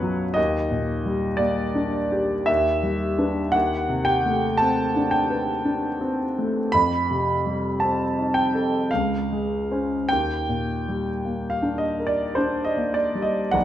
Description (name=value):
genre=classical, impressionist solo piano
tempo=50-59 BPM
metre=3/4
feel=rubato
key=unclear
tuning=A4 = 441 Hz
part: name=clear grand piano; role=solo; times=0.0-13.6 s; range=B1 to B5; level=-21 LUFS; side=equal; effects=none
room=wet recital hall reverb, RT60 1.4 s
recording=none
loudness=-21 LUFS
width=side -11 dB against mid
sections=0.0-13.6 A section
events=none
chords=0.4 Ebmaj7; 2.5 Em7/Eb; 3.5 Am11/Eb; 6.7 F9; 8.9 C#maj7; 10.1 Ebmaj7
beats=| 0.37 1.42 2.49 | 3.54 4.60 5.64 | 6.73 7.80 8.90 | 10.08 11.24 12.38 | 13.55